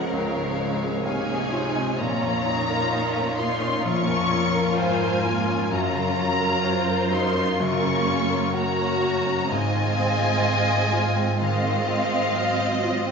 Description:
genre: cinematic, emotional film score for orchestra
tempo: 64 BPM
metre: 4/4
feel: rubato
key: unclear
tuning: A4 = 440 Hz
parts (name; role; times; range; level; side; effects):
- warm symphonic violin section; melody; 0.0-13.1 s; F5 to Db6; -27 LUFS; left 2 dB; none
- warm symphonic violin section; second line; 0.0-13.1 s; F4 to Eb5; -28 LUFS; left 2 dB; none
- clear baby grand piano; accompaniment; 0.0-13.1 s; Bb1 to Gb5; -29 LUFS; left 1 dB; none
- warm symphonic viola section; accompaniment; 0.0-13.1 s; C3 to C5; -28 LUFS; right 3 dB; none
- concert harp; arpeggios; 0.0-13.1 s; Gb2 to Db5; -30 LUFS; left 4 dB; none
- warm symphonic cello section; bass; 0.0-13.1 s; Gb2 to Db3; -28 LUFS; right 3 dB; none
room: wet recital hall reverb, RT60 1.6 s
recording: recorded in a church or concert hall, nothing above 7.5 kHz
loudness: -20 LUFS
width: side -5 dB against mid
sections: 0.0-13.1 A section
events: none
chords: 0.0 Db; 2.0 Bbm; 5.7 Gb; 9.5 Ab6

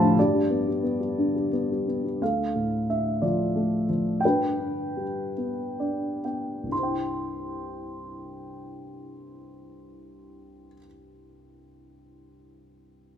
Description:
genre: classical, lyrical solo piano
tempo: 40-62 BPM (dotted quarters)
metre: 6/8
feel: rubato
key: C major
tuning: A4 = 440 Hz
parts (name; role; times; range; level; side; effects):
- dark upright piano; solo; 0.0-13.2 s; C2 to C6; -24 LUFS; left 1 dB; none
room: wet recital hall reverb, RT60 1.4 s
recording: minimal, uncompressed stereo recording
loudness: -24 LUFS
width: side -9 dB against mid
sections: 0.0-2.2 A section; 2.2-6.7 B section; 6.7-12.3 C section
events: slowing down 2.2-6.7; upright piano fill 5.4-6.7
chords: 0.2 G; 2.2 Dm; 4.2 G; 6.7 C

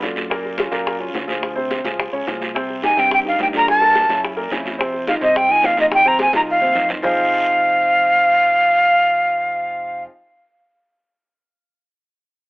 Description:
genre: Afro-Cuban jazz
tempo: 214 BPM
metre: 4/4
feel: straight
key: F minor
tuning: A4 = 441 Hz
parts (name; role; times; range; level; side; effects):
- clear concert grand piano; accompaniment; 0.0-10.1 s; Bb2 to Db5; -25 LUFS; equal; none
- modern bright fingered electric bass; bass; 0.0-10.1 s; F1 to G2; -33 LUFS; equal; none
- bongos; percussion; 0.0-7.1 s; none; -26 LUFS; left 2 dB; none
- congas; percussion; 0.0-7.1 s; none; -33 LUFS; equal; none
- guiro; percussion; 0.0-7.1 s; none; -29 LUFS; right 2 dB; none
- breathy bright jazz flute; melody; 2.8-10.0 s; Eb5 to Bb5; -14 LUFS; equal; none
room: moderate studio reverb, RT60 0.7 s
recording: telephone sound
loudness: -15 LUFS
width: side -25 dB against mid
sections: 0.0-7.0 A section; 7.0-9.3 B section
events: drum fill 6.3-7.0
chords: 0.3 Gbmaj9; 1.4 Dm7b5; 2.0 Db; 2.6 Cm; 3.7 Gm7; 4.2 Gb7; 4.8 F5; 7.0 Fm7

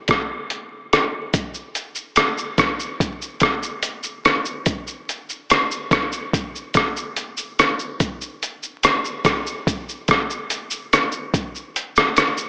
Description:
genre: indie pop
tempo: 72 BPM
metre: 4/4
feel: straight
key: none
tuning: none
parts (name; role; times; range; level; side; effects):
- lo-fi sampler-style drum kit; drums; 0.1-12.5 s; hi-hat, kick drum, rim click, shaker; -21 LUFS; equal; none
room: moderate plate reverb, RT60 2.7 s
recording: vinyl crackle, small speaker sound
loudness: -22 LUFS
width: mono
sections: 0.0-1.3 A section; 1.3-12.5 B section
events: none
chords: none

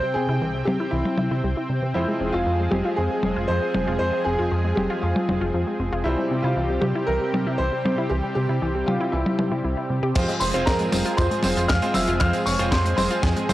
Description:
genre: italo disco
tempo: 117 BPM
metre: 4/4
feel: straight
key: F harmonic minor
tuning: A4 = 442 Hz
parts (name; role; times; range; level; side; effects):
- clear grand piano; melody; 0.0-13.5 s; E4 to F6; -26 LUFS; equal; tape echo
- lush unison pad; sustained chords; 0.0-13.5 s; C3 to G5; -27 LUFS; equal; chorus
- wide unison pluck; arpeggios; 0.0-13.5 s; E3 to G4; -30 LUFS; left 1 dB; tape echo
- bright grand piano; stabs; 0.0-13.5 s; C3 to E5; -30 LUFS; right 1 dB; low-pass filter
- chorused synth bass; bass; 0.2-13.5 s; F1 to C3; -26 LUFS; equal; tube saturation
- tight funk drum kit; drums; 0.7-13.5 s; crash cymbal, hi-hat, snare drum, tambourine, toms; -26 LUFS; left 1 dB; low-pass filter on cymbals, low-pass filter on toms, low-pass filter on hats, low-pass filter on snare, low-pass filter on perc, low-pass filter on room
- kick drum; drums; 10.2-13.3 s; none; -25 LUFS; equal; none
room: light reverb, small room ambience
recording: dry, gritty hardware recording, transformer saturation, cassette tape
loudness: -20 LUFS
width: side -15 dB against mid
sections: 0.0-10.2 A section; 10.2-13.5 B section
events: filter sweep on synth arpeggio sound 0.0-10.2; filter sweep on grand piano 0.0-10.2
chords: 0.0 C; 2.0 Fm; 6.1 C; 10.2 Fm

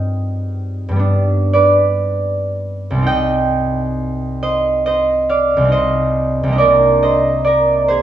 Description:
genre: classical, solo harp piece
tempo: 54-70 BPM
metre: 4/4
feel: rubato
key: C minor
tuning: A4 = 438 Hz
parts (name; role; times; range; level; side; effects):
- concert harp; solo; 0.0-8.0 s; C2 to G5; -13 LUFS; right 1 dB; none
room: wet recital hall reverb, RT60 1.4 s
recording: worn, warbling old tape, cassette tape, warbly pitch drift, small room reverb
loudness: -13 LUFS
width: side -11 dB against mid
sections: 0.0-8.0 A section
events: none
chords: 0.0 Cm/G; 1.0 G; 3.0 Cm; 6.6 Gm/C

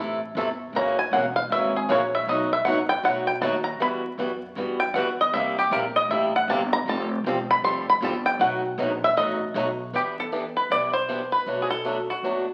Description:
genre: acoustic string swing (jazz manouche)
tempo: 157 BPM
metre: 4/4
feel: swing 63% on 8ths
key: unclear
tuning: A4 = 441 Hz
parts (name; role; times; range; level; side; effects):
- picked swing-style acoustic guitar; accompaniment; 0.0-12.5 s; B2 to A4; -29 LUFS; equal; none
- upright bass; bass; 0.0-12.5 s; E1 to G2; -38 LUFS; equal; none
- bluegrass banjo; melody; 0.8-12.5 s; F#4 to C6; -26 LUFS; equal; none
room: wet large studio reverb, RT60 1.1 s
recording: very old 78 rpm record, vinyl crackle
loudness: -24 LUFS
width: mono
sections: 0.0-9.9 A section; 9.9-12.5 B section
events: five-string banjo solo 0.0-9.9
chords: 0.0 C6; 0.7 F#7; 2.3 B7; 3.8 Emadd9; 5.3 C7; 6.9 Fadd9; 8.4 B7; 9.9 Em7; 11.5 Bm7

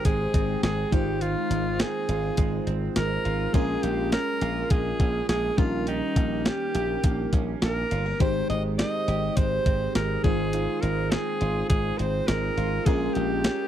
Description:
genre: 1980s-style pop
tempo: 103 BPM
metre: 4/4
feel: straight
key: unclear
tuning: A4 = 440 Hz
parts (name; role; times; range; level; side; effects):
- edgy alto saxophone; melody; 0.0-13.7 s; Eb4 to Eb5; -29 LUFS; equal; slapback echo
- FM electric piano with soft pad layer; accompaniment; 0.0-13.7 s; G3 to G5; -31 LUFS; left 2 dB; chorus
- direct-recorded clean electric guitar; riff; 0.0-13.7 s; Eb3 to G4; -33 LUFS; right 8 dB; analog chorus, slapback echo
- clean 12-bit digital drum machine; drums; 0.0-13.6 s; hi-hat, kick drum, snare drum; -24 LUFS; equal; none
- dry thumbed slap bass; bass; 0.1-13.5 s; G1 to Bb1; -29 LUFS; equal; none
room: digital ambience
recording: dry, close 1970s-style studio recording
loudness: -23 LUFS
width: side -11 dB against mid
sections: 0.0-13.7 A section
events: none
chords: 0.0 Abmaj7; 0.9 Fm7/Ab; 3.5 Bbm7; 5.6 Eb7/Bb; 8.2 Abmaj7; 10.2 Fm7/Ab; 12.9 Bbm7

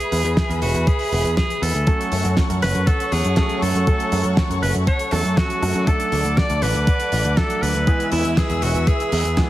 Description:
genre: italo disco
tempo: 120 BPM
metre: 4/4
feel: straight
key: F# minor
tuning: A4 = 439 Hz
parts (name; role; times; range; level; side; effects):
- edgy alto saxophone; melody; 0.0-9.5 s; E4 to D5; -24 LUFS; equal; ping-pong delay
- muted studio string section; sustained chords; 0.0-9.5 s; G#4 to E6; -27 LUFS; left 2 dB; none
- damped 70s drum kit; drums; 0.0-9.5 s; hi-hat, snare drum; -25 LUFS; right 1 dB; studio reverb
- picked electric bass; bass; 0.1-9.4 s; E1 to F#2; -21 LUFS; equal; none
- electronic kick drum; drums; 0.4-9.5 s; none; -19 LUFS; equal; studio reverb
- clear baby grand piano; stabs; 1.9-9.5 s; E3 to A4; -27 LUFS; right 3 dB; none
room: light reverb, small room ambience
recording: heavily compressed radio sound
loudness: -17 LUFS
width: side -14 dB against mid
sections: 0.0-9.5 A section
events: none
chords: 0.0 E; 1.9 F#m; 5.9 D; 7.9 E

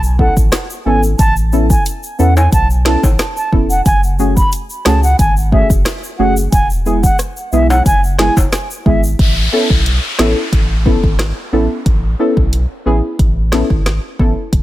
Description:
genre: dancehall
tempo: 90 BPM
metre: 4/4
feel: straight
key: unclear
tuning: A4 = 440 Hz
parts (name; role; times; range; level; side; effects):
- warm sub bass; bass; 0.0-14.6 s; E1 to E2; -15 LUFS; equal; none
- egg shaker and timbales; percussion; 0.0-9.2 s; none; -24 LUFS; left 2 dB; none
- mellow wooden flute; melody; 0.2-9.0 s; E5 to B5; -18 LUFS; right 1 dB; digital delay
- deep mellow chord stab; accompaniment; 0.2-14.3 s; G#3 to A4; -18 LUFS; equal; chorus
- afro-pop drum kit; drums; 0.2-14.6 s; hi-hat, kick drum, rim click, snare drum; -14 LUFS; equal; none
- downlifter; sound effects; 9.2-14.5 s; none; -22 LUFS; left 2 dB; none
room: digital ambience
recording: none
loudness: -11 LUFS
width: side -15 dB against mid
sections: 0.0-9.2 A section; 9.2-14.6 B section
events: none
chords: 0.0 Aadd9; 3.9 F#madd9; 6.5 E; 9.2 Aadd9

